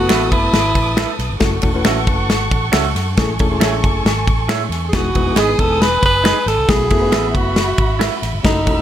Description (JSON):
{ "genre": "uptempo 1960s-style soul", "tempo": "136 BPM", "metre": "4/4", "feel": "straight", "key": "unclear", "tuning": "A4 = 443 Hz", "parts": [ { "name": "breathy tenor saxophone", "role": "melody", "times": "0.0-1.2, 4.9-8.8 s", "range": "D#4 to B4", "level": "-17 LUFS", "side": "equal", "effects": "none" }, { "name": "dark studio violin section", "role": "second line", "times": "0.0-8.8 s", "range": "F#4 to E6", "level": "-23 LUFS", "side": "right 1 dB", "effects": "tape echo" }, { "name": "reed electric piano", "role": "accompaniment", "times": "0.0-8.8 s", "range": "G#3 to B4", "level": "-23 LUFS", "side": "left 3 dB", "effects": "spring reverb" }, { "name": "vintage muted fingered electric bass", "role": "bass", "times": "0.0-8.8 s", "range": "E1 to A2", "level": "-21 LUFS", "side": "equal", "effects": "none" }, { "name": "electric guitar through a small old amp", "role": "stabs", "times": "0.1-8.1 s", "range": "C#4 to E5", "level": "-23 LUFS", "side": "right 10 dB", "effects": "none" }, { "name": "natural country drum kit", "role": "drums", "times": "0.1-8.8 s", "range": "kick drum, ride cymbal, snare drum", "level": "-18 LUFS", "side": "equal", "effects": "none" }, { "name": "finger snap", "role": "percussion", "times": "0.1-8.1 s", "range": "none", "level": "-25 LUFS", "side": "left 6 dB", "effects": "none" } ], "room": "studio ambience", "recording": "none", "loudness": "-13 LUFS", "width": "side -10 dB against mid", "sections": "0.0-8.8 A section", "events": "none", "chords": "0.0 B7sus4; 1.4 F#m7; 3.2 Amaj7; 4.9 Emaj7; 6.7 B7sus4", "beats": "0.10 0.54 0.98 | 1.42 1.86 2.29 2.73 | 3.17 3.61 4.05 4.49 | 4.93 5.37 5.81 6.25 | 6.69 7.13 7.57 8.01 | 8.45" }